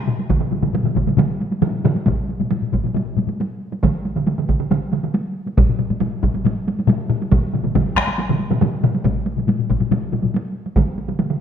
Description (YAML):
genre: japanese traditional, taiko drum ensemble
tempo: 138 BPM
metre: 4/4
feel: straight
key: none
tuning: none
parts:
  - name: taiko ensemble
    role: percussion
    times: 0.1-10.3 s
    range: none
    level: -21 LUFS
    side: left 6 dB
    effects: none
  - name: taiko ensemble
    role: percussion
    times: 0.2-11.3 s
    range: none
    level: -22 LUFS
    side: right 2 dB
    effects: none
  - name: taiko ensemble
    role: percussion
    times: 0.3-11.4 s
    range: none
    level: -22 LUFS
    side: right 5 dB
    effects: none
  - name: taiko ensemble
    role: percussion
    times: 0.3-10.9 s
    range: none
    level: -22 LUFS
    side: right 1 dB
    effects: none
room: wet recital hall reverb, RT60 1.4 s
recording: none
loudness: -17 LUFS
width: side -8 dB against mid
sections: 0.0-2.1 A section; 2.1-11.4 B section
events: speeding up 0.0-11.4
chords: none